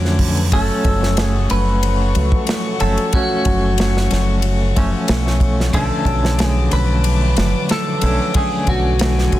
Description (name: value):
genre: trip hop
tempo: 92 BPM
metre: 4/4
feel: swing 53% on 16ths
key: F# harmonic minor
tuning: A4 = 440 Hz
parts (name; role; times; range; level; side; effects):
- clean electric guitar; accompaniment; 0.0-9.4 s; D3 to C#4; -23 LUFS; equal; tremolo
- warm studio string section; sustained chords; 0.0-9.4 s; A4 to D6; -29 LUFS; left 1 dB; none
- Celtic harp; arpeggios; 0.0-9.4 s; F#2 to F#4; -24 LUFS; left 5 dB; tape echo
- deep dub fingered electric bass; bass; 0.0-9.4 s; F#1 to E#2; -18 LUFS; equal; none
- modern studio drum kit; drums; 0.1-9.4 s; hi-hat, kick drum, ride cymbal, snare drum; -20 LUFS; equal; none
- clean electric guitar; melody; 0.5-9.4 s; F#4 to B4; -23 LUFS; equal; lush chorus, dub echo
room: studio ambience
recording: dense, heavily limited modern master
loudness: -14 LUFS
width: side -14 dB against mid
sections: 0.0-9.4 A section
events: none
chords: 0.0 Bm7; 0.5 F#m; 5.7 Bm7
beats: | 0.52 1.17 1.82 2.48 | 3.13 3.78 4.43 5.09 | 5.74 6.39 7.04 7.70 | 8.35 9.00